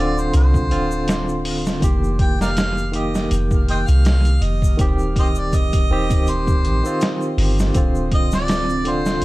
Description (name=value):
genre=trip hop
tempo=81 BPM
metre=4/4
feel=swing 55% on 16ths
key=D phrygian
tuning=A4 = 441 Hz
part: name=warm harmonica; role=melody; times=0.0-9.2 s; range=G4 to G5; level=-26 LUFS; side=right 1 dB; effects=dub echo
part: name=barky tine electric piano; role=accompaniment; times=0.0-9.2 s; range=D3 to G4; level=-23 LUFS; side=equal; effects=tremolo, tape echo
part: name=soft 808-style bass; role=bass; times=0.0-9.2 s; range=D1 to C2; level=-20 LUFS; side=equal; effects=none
part: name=tube shaker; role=percussion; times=0.2-9.2 s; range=none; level=-40 LUFS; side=left 3 dB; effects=none
part: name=trip hop sampler-style drum kit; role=drums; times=0.3-9.2 s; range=hi-hat, kick drum, snare drum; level=-20 LUFS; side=equal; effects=none
part: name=dark analog pad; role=sustained chords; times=8.6-9.2 s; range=C4 to D5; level=-28 LUFS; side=right 2 dB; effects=chorus, vintage 12-bit sampler grit
room=little or no reverb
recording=dark, warm production, vinyl crackle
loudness=-16 LUFS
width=side -19 dB against mid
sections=0.0-9.2 A section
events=none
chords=0.0 Dm7; 1.8 F9sus4; 4.8 Eb6; 7.8 Dm7